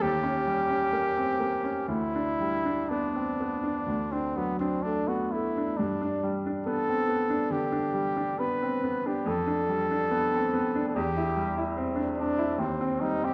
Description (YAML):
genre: classical, romantic duo for trumpet and grand piano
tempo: 58-75 BPM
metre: 4/4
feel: rubato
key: G major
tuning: A4 = 440 Hz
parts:
  - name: mellow trumpet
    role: melody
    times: 0.0-13.3 s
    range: B3 to B4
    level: -31 LUFS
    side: equal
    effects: none
  - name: bright baby grand piano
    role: accompaniment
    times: 0.0-13.3 s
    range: D2 to E4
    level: -31 LUFS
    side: equal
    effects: none
room: wet recital hall reverb, RT60 1.3 s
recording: none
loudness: -28 LUFS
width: mono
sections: 0.0-13.3 A section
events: none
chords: 0.0 Eb7; 1.9 G/D; 3.9 D; 5.8 G; 9.3 G7/F; 10.9 C/E; 12.6 Cm/Eb